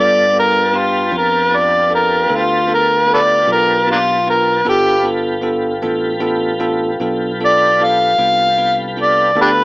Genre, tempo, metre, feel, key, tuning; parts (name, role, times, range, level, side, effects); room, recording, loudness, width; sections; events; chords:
slow blues; 51 BPM (dotted quarters); 12/8; straight; G mixolydian; A4 = 441 Hz
overdriven harmonica; melody; 0.0-9.6 s; Bb3 to F5; -12 LUFS; equal
bell-like tine electric piano; accompaniment; 0.0-9.6 s; B3 to B4; -21 LUFS; right 1 dB
tonewheel organ; sustained chords; 0.0-9.6 s; B3 to A5; -22 LUFS; equal; slow rotary speaker, chorus vibrato
fingered electric bass; bass; 0.0-9.6 s; G1 to G2; -27 LUFS; equal
moderate studio reverb, RT60 0.6 s; small speaker sound; -12 LUFS; side -24 dB against mid
0.0-9.6 A section
harmonica solo 0.0-9.6
0.0 G9